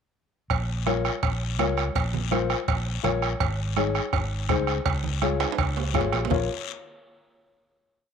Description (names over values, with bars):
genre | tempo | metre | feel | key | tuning
latin, cumbia | 165 BPM | 4/4 | straight | Bb minor | A4 = 440 Hz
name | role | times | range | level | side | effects
fingered electric bass | bass | 0.5-6.5 s | Ab1 to Db2 | -28 LUFS | equal | none
bombo | percussion | 0.5-6.4 s | none | -28 LUFS | right 2 dB | none
congas | percussion | 0.5-6.4 s | none | -33 LUFS | right 11 dB | none
cowbell and timbales | percussion | 0.5-6.4 s | none | -33 LUFS | right 11 dB | none
guiro | percussion | 0.5-6.4 s | none | -37 LUFS | left 13 dB | none
dark upright piano | accompaniment | 0.9-6.5 s | Eb4 to Db5 | -29 LUFS | left 10 dB | none
room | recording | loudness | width
moderate spring reverb, RT60 2.1 s | 1960s-style stereo with parts hard left and right | -23 LUFS | side -7 dB against mid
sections
0.5-6.3 groove; 6.3-7.8 final chord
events
drum fill 5.4-6.3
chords
0.5 Bbm; 3.4 Absus4; 4.9 Db; 6.3 Bbm